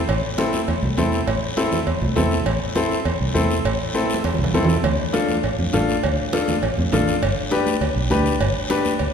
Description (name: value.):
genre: latin, cumbia.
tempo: 202 BPM.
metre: 4/4.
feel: straight.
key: A minor.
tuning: A4 = 440 Hz.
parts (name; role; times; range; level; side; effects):
fingered electric bass; bass; 0.0-9.1 s; G1 to F2; -24 LUFS; right 1 dB; none.
congas; percussion; 0.1-9.1 s; none; -26 LUFS; right 2 dB; none.
cowbell and timbales; percussion; 0.1-9.1 s; none; -28 LUFS; right 2 dB; none.
guiro; percussion; 0.1-9.1 s; none; -32 LUFS; left 3 dB; none.
bright upright piano; accompaniment; 0.4-8.9 s; C4 to B4; -22 LUFS; left 2 dB; none.
room: wet concert hall reverb, RT60 2.2 s.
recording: recorded in a church or concert hall.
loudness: -18 LUFS.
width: side -7 dB against mid.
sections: 0.1-9.1 A section.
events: drum fill 4.0-4.8.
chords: 0.1 Am; 4.8 Dm; 7.2 G.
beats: | 0.08 0.38 0.68 0.97 | 1.27 1.57 1.87 2.17 | 2.46 2.76 3.06 3.36 | 3.65 3.95 4.25 4.55 | 4.84 5.14 5.44 5.74 | 6.03 6.33 6.63 6.92 | 7.22 7.52 7.82 8.11 | 8.41 8.71 9.01.